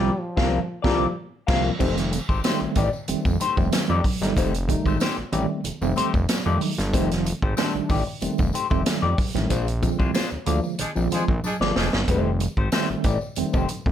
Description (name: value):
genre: funk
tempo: 93 BPM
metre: 4/4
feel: straight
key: F mixolydian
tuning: A4 = 439 Hz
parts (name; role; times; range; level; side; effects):
- mellow trombone; melody; 0.0-0.8 s; F3 to G3; -30 LUFS; right 1 dB; slapback echo
- clean electric guitar; accompaniment; 0.0-13.9 s; Ab3 to F5; -28 LUFS; left 7 dB; wah
- tine electric piano; stabs; 0.0-13.9 s; D3 to Eb4; -27 LUFS; right 3 dB; overdrive, fast stereo tremolo
- fat analog bass; bass; 0.0-13.9 s; F1 to F2; -25 LUFS; equal; none
- swinging big-band drum kit; drums; 0.4-13.9 s; crash cymbal, hi-hat, kick drum, snare drum; -25 LUFS; equal; none
- congas; percussion; 1.8-13.9 s; none; -34 LUFS; right 3 dB; none
- tambourine; percussion; 1.8-13.8 s; none; -42 LUFS; left 5 dB; none
- warm horn section; second line; 10.8-12.0 s; F3 to Ab4; -29 LUFS; left 1 dB; none
room: moderate studio reverb, RT60 0.5 s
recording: none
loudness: -21 LUFS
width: side -10 dB against mid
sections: 0.0-1.8 A section; 1.8-13.9 B section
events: band accent 0.0-1.8, 9.5-12.1; drum fill 11.4-12.1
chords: 0.0 C9sus4; 1.8 F9; 9.5 Bb9; 12.1 F9